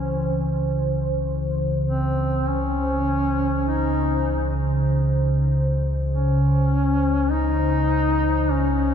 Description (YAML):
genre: dark ambient drone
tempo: 50 BPM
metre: 4/4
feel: straight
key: C# harmonic minor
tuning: A4 = 441 Hz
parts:
  - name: sweeping resonant pad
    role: sustained chords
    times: 0.0-8.9 s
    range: C#3 to B#4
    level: -26 LUFS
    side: right 1 dB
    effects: chorus
  - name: deep rumbling drone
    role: drone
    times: 0.0-8.9 s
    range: C#2 to C#3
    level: -22 LUFS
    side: equal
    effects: built-in reverb, wide subtle chorus
  - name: mellow duduk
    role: melody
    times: 1.9-8.9 s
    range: B#3 to D#4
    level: -24 LUFS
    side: left 2 dB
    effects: diffuse ambient delay
room: wet cathedral reverb, RT60 5.4 s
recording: dark, warm production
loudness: -19 LUFS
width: side -8 dB against mid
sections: 0.0-8.9 A section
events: none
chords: 0.0 C#m